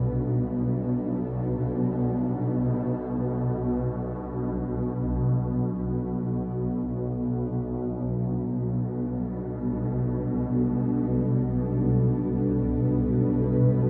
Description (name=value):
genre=dark ambient drone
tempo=free time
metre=none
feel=none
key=unclear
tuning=A4 = 439 Hz
part: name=dark analog pad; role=sustained chords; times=0.0-13.9 s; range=G3 to B4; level=-34 LUFS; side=equal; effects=chorus, shimmer reverb
part: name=swarming drone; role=drone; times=0.0-13.9 s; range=B1 to B2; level=-28 LUFS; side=equal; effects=built-in reverb
room=wet huge ambient reverb, RT60 8.4 s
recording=cassette tape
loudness=-27 LUFS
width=mono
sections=0.0-8.0 A section; 8.0-13.9 B section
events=fade-out on analog synth pad 0.0-8.0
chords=0.0 Gadd9